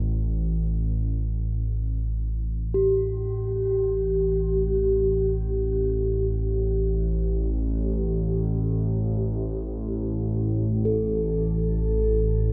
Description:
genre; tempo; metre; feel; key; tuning
world meditative, free-time meditation music; free time; none; none; unclear; A4 = 435 Hz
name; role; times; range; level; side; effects
analog drone; drone; 0.0-12.5 s; A1; -27 LUFS; equal; lush chorus
bronze singing bowl; texture; 2.7-12.5 s; G4 to A4; -29 LUFS; equal; none
room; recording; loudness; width
wet huge ambient reverb, RT60 8.2 s; dreamy mix soaked in reverb, nothing above 7.9 kHz; -25 LUFS; mono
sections
0.0-2.7 A section; 2.7-12.5 A section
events
none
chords
none

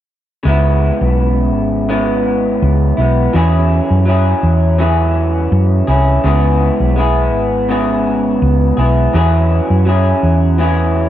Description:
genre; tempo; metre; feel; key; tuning
indie pop; 83 BPM; 4/4; swing 55% on 16ths; unclear; A4 = 440 Hz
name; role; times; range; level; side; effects
electric guitar through a small old amp; accompaniment; 0.4-11.1 s; C#3 to G#4; -14 LUFS; equal; wide subtle chorus, warbly pitch drift
hollow-body short-scale fingered electric bass; bass; 0.5-11.1 s; G#1 to F#2; -13 LUFS; equal; none
room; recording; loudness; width
light reverb; dry, close 1970s-style studio recording; -11 LUFS; side -12 dB against mid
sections
0.5-11.1 A section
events
none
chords
0.5 C#m7; 3.3 E69; 6.2 C#m7; 9.1 E69

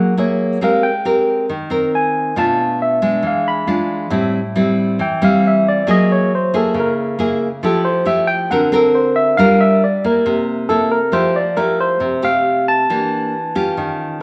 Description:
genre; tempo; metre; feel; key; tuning
bossa nova; 137 BPM; 4/4; straight; F major; A4 = 438 Hz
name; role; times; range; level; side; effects
barky tine electric piano; melody; 0.0-14.2 s; A4 to B5; -20 LUFS; equal; overdrive
nylon-string guitar; accompaniment; 0.0-14.2 s; A2 to Bb4; -18 LUFS; equal; none
room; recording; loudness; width
wet stone room reverb, RT60 1.4 s; band playing live in one room; -16 LUFS; mono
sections
0.0-11.1 A section; 11.1-14.2 B section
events
tine electric piano solo 0.0-11.1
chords
0.0 Gb9; 0.6 Abmaj9; 2.4 Bm7b5; 3.2 E7b9; 4.1 Am7; 5.9 Gb9; 7.6 Fmaj9; 8.5 D7b13; 9.4 Gm7; 10.3 C6; 11.1 Fmaj9; 12.9 Em7b5

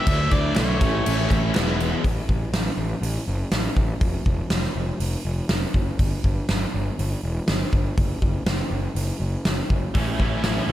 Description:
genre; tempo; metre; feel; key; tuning
classic rock; 121 BPM; 4/4; straight; A major; A4 = 440 Hz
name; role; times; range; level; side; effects
warm harmonica; melody; 0.0-1.5 s; C#5 to E5; -29 LUFS; left 1 dB; analog delay
tonewheel organ; sustained chords; 0.0-2.0, 10.0-10.7 s; G#3 to D5; -36 LUFS; left 1 dB; none
biting overdriven guitar; riff; 0.0-2.0, 9.9-10.7 s; A2 to E4; -28 LUFS; right 8 dB; none
cranked stack guitar; riff; 0.0-2.0, 9.9-10.7 s; E2 to E4; -29 LUFS; left 11 dB; overdrive, harmonic tremolo
mellow reed electric piano; accompaniment; 0.1-1.9 s; B3 to D5; -33 LUFS; right 3 dB; fast tremolo
fuzz picked electric bass; bass; 0.1-10.7 s; E1 to D2; -25 LUFS; equal; overdrive
huge arena drum kit; drums; 0.1-10.6 s; crash cymbal, hi-hat, kick drum, snare drum; -24 LUFS; equal; none
group handclap; percussion; 0.6-1.7 s; none; -38 LUFS; right 3 dB; none
room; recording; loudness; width
light reverb, studio reverb; none; -21 LUFS; side -13 dB against mid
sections
0.0-2.0 A section; 2.0-10.7 B section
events
none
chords
0.1 Dsus2; 0.8 A; 1.5 E; 2.0 N.C.; 10.0 A

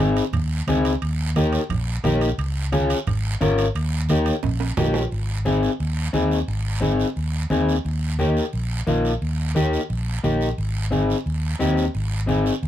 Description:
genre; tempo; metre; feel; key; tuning
latin, cumbia; 176 BPM; 4/4; straight; Ab major; A4 = 438 Hz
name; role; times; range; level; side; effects
electric guitar at the edge of break-up; accompaniment; 0.0-12.5 s; Bb3 to Bb4; -21 LUFS; left 2 dB; none
fingered electric bass; bass; 0.0-12.7 s; Ab1 to Eb2; -23 LUFS; equal; none
timbales; percussion; 0.0-5.0 s; none; -31 LUFS; right 7 dB; none
guiro; percussion; 0.2-12.7 s; none; -35 LUFS; right 6 dB; none
congas; percussion; 0.3-12.7 s; none; -27 LUFS; right 2 dB; none
room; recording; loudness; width
light reverb; close, detailed microphones; -20 LUFS; side -11 dB against mid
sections
0.0-5.1 A section; 5.1-12.7 B section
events
drum fill 4.4-5.1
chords
0.0 Ab; 1.0 Eb; 2.4 Db; 3.7 Eb; 5.1 Ab; 7.8 Eb; 10.6 Ab

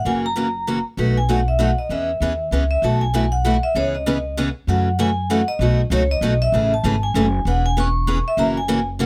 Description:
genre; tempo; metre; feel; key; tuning
acoustic string swing (jazz manouche); 195 BPM; 3/4; swing 58% on 8ths; unclear; A4 = 437 Hz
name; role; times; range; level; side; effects
vibraphone with hard mallets; melody; 0.0-9.1 s; B4 to C#6; -24 LUFS; equal; none
picked steel-string acoustic guitar; accompaniment; 0.1-9.1 s; B2 to G#4; -24 LUFS; equal; none
upright bass; bass; 0.1-9.1 s; E1 to F#2; -24 LUFS; equal; none
room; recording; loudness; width
little or no reverb; close, detailed microphones; -20 LUFS; mono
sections
0.0-2.8 A section; 2.8-9.1 B section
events
none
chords
0.1 F#7; 1.0 B7; 1.9 E6; 2.8 B7sus4; 3.8 C#m9; 4.7 F#m7; 5.6 B7; 6.5 Amaj7; 7.5 E6; 8.4 F#7

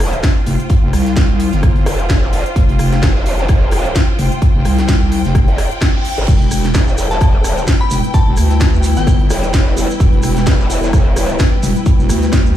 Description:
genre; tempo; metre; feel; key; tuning
bass house; 129 BPM; 4/4; swing 56% on 16ths; E phrygian; A4 = 439 Hz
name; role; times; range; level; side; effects
growl bass; bass; 0.0-11.4 s; E1 to G1; -17 LUFS; equal; chorus, sidechain pumping
house drum kit; drums; 0.0-12.4 s; crash cymbal, hi-hat, rim click, snare drum; -22 LUFS; equal; small room ambience
warm soul drum kit; drums; 0.0-12.5 s; hi-hat, snare drum; -34 LUFS; left 2 dB; none
rich studio string section; texture; 0.0-12.6 s; E4 to G5; -24 LUFS; equal; sidechain pumping
electronic kick drum; drums; 0.2-12.4 s; none; -12 LUFS; equal; small room ambience
wobble bass; bass; 0.5-12.6 s; E1 to D2; -14 LUFS; equal; chorus, overdrive, sidechain pumping
reverse cymbal; sound effects; 5.6-6.3 s; none; -29 LUFS; right 4 dB; none
dark analog pad; sustained chords; 7.0-12.6 s; G3 to B4; -23 LUFS; left 1 dB; chorus, sidechain pumping
shekere; percussion; 6.3-12.5 s; none; -30 LUFS; right 4 dB; none
glassy synth bell; melody; 7.1-9.4 s; G5 to B5; -24 LUFS; left 3 dB; chorus, ping-pong delay
room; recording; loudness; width
little or no reverb; played on a big sound system in a bare room, large studio reverb; -11 LUFS; side -12 dB against mid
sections
0.0-12.6 A section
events
reverse cymbal 5.6-6.3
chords
0.0 Fsus2; 6.3 Em

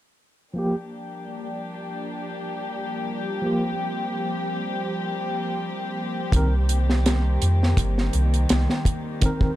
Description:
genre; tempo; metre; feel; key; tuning
trip hop; 83 BPM; 4/4; swing 54% on 16ths; G minor; A4 = 440 Hz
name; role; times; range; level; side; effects
tine electric piano; accompaniment; 0.5-9.5 s; Eb3 to Bb4; -28 LUFS; equal; tremolo, vintage 12-bit sampler grit, low-pass filter, tape echo
dark studio string section; sustained chords; 0.5-9.6 s; Eb3 to G4; -29 LUFS; left 2 dB; low-pass filter
bowed-like drone; texture; 1.3-9.6 s; G3 to G4; -35 LUFS; right 2 dB; built-in reverb
soft dub sub bass; bass; 6.3-8.7 s; G1 to F2; -20 LUFS; equal; none
deep reggae drum kit; drums; 6.3-9.6 s; hi-hat, kick drum, snare drum; -22 LUFS; equal; small room ambience
room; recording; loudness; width
small room ambience; dark, warm production; -22 LUFS; side -14 dB against mid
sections
0.5-9.6 A section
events
filter sweep on tine electric piano 0.5-9.6; filter sweep on string section 0.5-9.6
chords
0.5 Gm7; 6.3 Cm7

